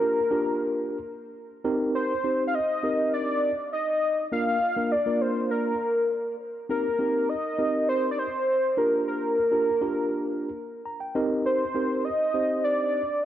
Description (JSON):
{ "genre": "dance-pop", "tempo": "101 BPM", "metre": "4/4", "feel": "straight", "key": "C minor", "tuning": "A4 = 440 Hz", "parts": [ { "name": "warm velvety synth lead", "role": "melody", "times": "0.0-13.2 s", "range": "Bb4 to F5", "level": "-25 LUFS", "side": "equal", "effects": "chorus" }, { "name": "mellow tine electric piano", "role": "accompaniment", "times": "0.0-13.0 s", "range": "Bb3 to Bb5", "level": "-28 LUFS", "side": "right 1 dB", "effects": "medium stereo tremolo" } ], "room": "moderate lush hall reverb, RT60 2.7 s", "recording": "worn, warbling old tape, cassette tape, warbly pitch drift, nothing above 10.7 kHz", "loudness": "-23 LUFS", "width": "side -11 dB against mid", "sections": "0.0-13.3 A section", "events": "tine electric piano fill 10.6-11.5", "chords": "0.0 Gm7; 1.6 Cm7; 4.3 Bb; 6.7 Cm7; 8.8 Gm7; 11.2 Cm7", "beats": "0.16 0.76 1.35 | 1.95 2.54 3.13 3.73 | 4.32 4.92 5.51 6.10 | 6.70 7.29 7.89 8.48 | 9.07 9.67 10.26 10.86 | 11.45 12.04 12.64 13.23" }